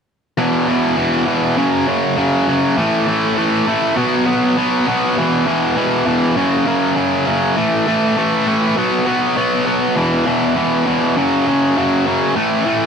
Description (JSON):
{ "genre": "rock", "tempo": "100 BPM", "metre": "4/4", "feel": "straight", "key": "unclear", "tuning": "A4 = 440 Hz", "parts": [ { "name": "tight distorted guitar", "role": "solo", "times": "0.4-12.9 s", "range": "E2 to B3", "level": "-14 LUFS", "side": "equal", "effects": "distortion" } ], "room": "moderate booth ambience, RT60 0.2 s", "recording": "dry, close 1970s-style studio recording", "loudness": "-14 LUFS", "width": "side -6 dB against mid", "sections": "0.4-12.9 A section", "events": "none", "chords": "0.4 E5; 1.6 F#5; 2.8 A5; 4.0 B5; 5.2 E5; 6.4 F#5; 7.6 A5; 8.8 B5; 10.0 E5; 11.2 F#5" }